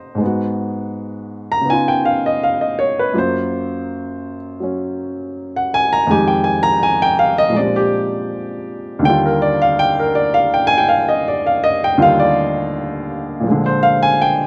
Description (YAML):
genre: solo jazz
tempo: 82 BPM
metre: 4/4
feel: swing 67% on 8ths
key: Eb major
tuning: A4 = 440 Hz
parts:
  - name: warm grand piano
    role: solo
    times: 0.0-14.5 s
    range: Eb2 to Bb5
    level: -14 LUFS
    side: equal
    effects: none
room: little or no reverb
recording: recorded outdoors, with no room sound, nothing above 10.5 kHz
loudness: -14 LUFS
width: side -30 dB against mid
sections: 0.0-14.5 A section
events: grand piano solo 0.0-14.5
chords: 0.2 Abm7; 1.7 Db9; 3.1 Gbmaj7; 6.1 Fm9; 7.6 Bb13; 9.0 Ebmaj9; 13.5 Bb7